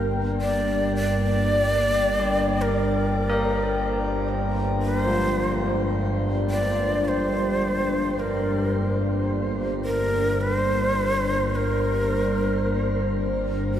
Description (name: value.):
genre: dark ambient drone.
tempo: 54 BPM.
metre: 4/4.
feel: straight.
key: G minor.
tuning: A4 = 440 Hz.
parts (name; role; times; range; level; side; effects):
breathy shakuhachi; melody; 0.0-13.8 s; G4 to D5; -25 LUFS; equal; shimmer reverb, diffuse ambient delay.
deep dark ambient pad; sustained chords; 0.0-13.8 s; Bb3 to G5; -28 LUFS; equal; chorus, built-in reverb, shimmer reverb.
analog drone; drone; 0.0-13.8 s; G1 to G2; -26 LUFS; equal; chorus.
carillon bells; arpeggios; 2.2-11.7 s; F3 to Bb4; -31 LUFS; left 1 dB; shimmer reverb, diffuse ambient delay.
room: wet cathedral reverb, RT60 5.7 s.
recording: none.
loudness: -21 LUFS.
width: side -10 dB against mid.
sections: 0.0-13.8 A section.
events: none.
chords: 0.0 Gm.